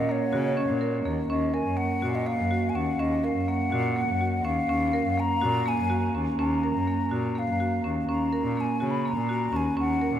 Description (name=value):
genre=contemporary instrumental, chamber music in an uneven meter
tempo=248 BPM (eighths)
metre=7/8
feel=straight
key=Eb minor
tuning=A4 = 442 Hz
part: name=breathy mellow silver concert flute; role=melody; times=0.0-10.2 s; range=Db5 to Cb6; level=-29 LUFS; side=left 2 dB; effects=none
part: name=clear cello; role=bass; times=0.0-10.2 s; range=Eb2 to Db3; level=-30 LUFS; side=left 1 dB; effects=none
part: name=marimba with hard mallets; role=arpeggios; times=0.1-10.2 s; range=Bb3 to Bb4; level=-27 LUFS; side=right 2 dB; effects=none
room=wet cathedral reverb, RT60 5.9 s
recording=in a vast, echoing space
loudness=-24 LUFS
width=side -10 dB against mid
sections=0.0-1.3 A section; 1.3-10.2 A section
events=none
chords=0.0 Eb7(no3)